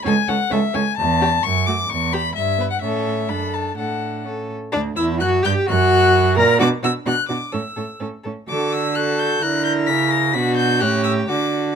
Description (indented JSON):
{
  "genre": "quick classical-period movement for string quartet",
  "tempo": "128 BPM",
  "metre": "2/4",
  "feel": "straight",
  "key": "D major",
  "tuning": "A4 = 440 Hz",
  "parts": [
    { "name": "warm violin", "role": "melody", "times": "0.0-11.8 s", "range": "E5 to B6", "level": "-22 LUFS", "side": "left 6 dB", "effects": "none" },
    { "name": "warm viola", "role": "accompaniment", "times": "0.0-11.8 s", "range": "A3 to A#4", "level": "-24 LUFS", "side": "right 5 dB", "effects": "none" },
    { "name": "rich violin", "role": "second line", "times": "0.1-11.8 s", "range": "D4 to B4", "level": "-23 LUFS", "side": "left 3 dB", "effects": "none" },
    { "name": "warm cello", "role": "bass", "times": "0.1-11.8 s", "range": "C#2 to D3", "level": "-22 LUFS", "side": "right 5 dB", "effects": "none" }
  ],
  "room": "light reverb",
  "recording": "close, detailed microphones",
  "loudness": "-17 LUFS",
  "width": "side -7 dB against mid",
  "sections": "0.0-4.7 A section; 4.7-11.8 B section",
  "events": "none",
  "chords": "0.0 A/C#; 1.0 A/E; 1.4 D/F#; 1.9 E5; 2.4 Em/G; 2.8 A; 3.3 D/F#; 3.8 D/A; 4.3 A; 4.7 D; 5.7 F#; 6.6 Bm; 7.5 A; 8.5 D; 9.4 F#7b13; 10.3 Bm; 10.8 A7",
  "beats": "| 0.05 0.51 | 0.97 1.43 | 1.89 2.36 | 2.82 3.30 | 3.77 4.25 | 4.73 5.20 | 5.67 6.13 | 6.60 7.06 | 7.53 8.01 | 8.48 8.96 | 9.42 9.88 | 10.34 10.81 | 11.29"
}